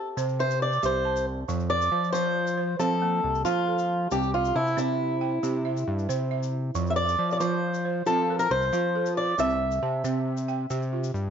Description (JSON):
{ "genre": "west african traditional, West African string and xylophone music", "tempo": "91 BPM (dotted quarters)", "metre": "12/8", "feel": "straight", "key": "F major", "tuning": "A4 = 440 Hz", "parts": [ { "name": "balafon", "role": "arpeggios", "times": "0.0-11.3 s", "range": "F3 to A5", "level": "-32 LUFS", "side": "right 12 dB", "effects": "none" }, { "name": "fat analog bass", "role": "bass", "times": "0.2-11.3 s", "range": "C2 to F3", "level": "-29 LUFS", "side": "left 2 dB", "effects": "none" }, { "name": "tube shaker", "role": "percussion", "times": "0.2-11.2 s", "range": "none", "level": "-44 LUFS", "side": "left 17 dB", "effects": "none" }, { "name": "fingerpicked swing-style acoustic guitar", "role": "melody", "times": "0.4-11.3 s", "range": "E4 to E5", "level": "-26 LUFS", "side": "equal", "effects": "slapback echo" } ], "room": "studio ambience", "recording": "1960s-style stereo with parts hard left and right, nothing above 7.6 kHz", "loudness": "-24 LUFS", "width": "side -8 dB against mid", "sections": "0.0-1.5 A section; 1.5-11.3 B section", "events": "steel-string acoustic guitar solo 0.0-1.5", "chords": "0.0 C; 1.5 F; 4.1 C; 6.7 F; 9.4 C", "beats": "0.17 0.83 | 1.48 2.14 2.80 3.45 | 4.11 4.77 5.43 6.09 | 6.75 7.41 8.07 8.73 | 9.39 10.05 10.71" }